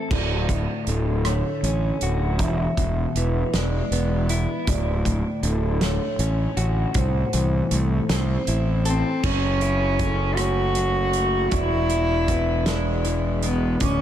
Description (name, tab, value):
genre	post-rock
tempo	52 BPM (dotted quarters)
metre	6/8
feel	straight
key	D lydian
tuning	A4 = 440 Hz
part	semi-hollow electric guitar	arpeggios	0.0-14.0 s	D2 to A4	-28 LUFS	left 3 dB	spring reverb, ping-pong delay
part	vibraphone with medium hard mallets	arpeggios	0.1-14.0 s	A4 to D6	-31 LUFS	right 3 dB	ping-pong delay
part	fuzz fingered electric bass	bass	0.1-14.0 s	D1 to C2	-23 LUFS	equal	overdrive
part	loose indie drum kit	drums	0.1-14.0 s	crash cymbal, hi-hat, kick drum, rim click, snare drum	-28 LUFS	right 1 dB	none
part	rich cello	melody	8.9-14.0 s	B3 to F#4	-23 LUFS	equal	ping-pong delay
room	moderate huge ambient reverb, RT60 4.1 s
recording	dreamy mix soaked in reverb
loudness	-20 LUFS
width	side -10 dB against mid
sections	0.1-9.2 A section; 9.2-14.0 B section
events	none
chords	0.1 Dmaj7; 2.4 E7; 4.7 Dmaj7; 7.0 Am/C; 9.2 F#m7; 11.5 E7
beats	| 0.11 1.25 | 2.39 3.53 | 4.67 5.82 | 6.96 8.10 | 9.24 10.38 | 11.53 12.67 | 13.81